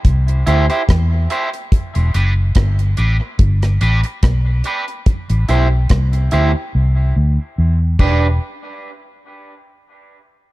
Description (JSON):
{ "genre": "dub reggae", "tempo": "72 BPM", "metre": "4/4", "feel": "swing 55% on 16ths", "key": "E minor", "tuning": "A4 = 440 Hz", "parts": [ { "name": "deep reggae drum kit", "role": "drums", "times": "0.0-8.2 s", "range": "crash cymbal, hi-hat, kick drum, rim click", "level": "-15 LUFS", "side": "equal", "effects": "none" }, { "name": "vintage muted fingered electric bass", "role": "bass", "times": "0.1-8.4 s", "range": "E1 to E2", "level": "-14 LUFS", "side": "equal", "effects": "none" }, { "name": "electric guitar at the edge of break-up", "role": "accompaniment", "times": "0.5-8.3 s", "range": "D4 to C5", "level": "-22 LUFS", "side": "right 2 dB", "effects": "high-pass filter, dub echo" } ], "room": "studio reverb", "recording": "dark, warm production", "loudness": "-13 LUFS", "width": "side -18 dB against mid", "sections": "0.0-8.4 A section; 8.4-10.5 B section", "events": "filter sweep on clean electric guitar 0.0-5.1; drums muted 6.7-8.4", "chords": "0.0 Am7 (rootless); 1.7 Em7 (rootless); 5.1 Am7 (rootless); 8.0 Em7; 8.4 N.C.", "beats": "0.04 0.88 | 1.72 2.56 3.39 4.23 | 5.07 5.90 6.74 7.57" }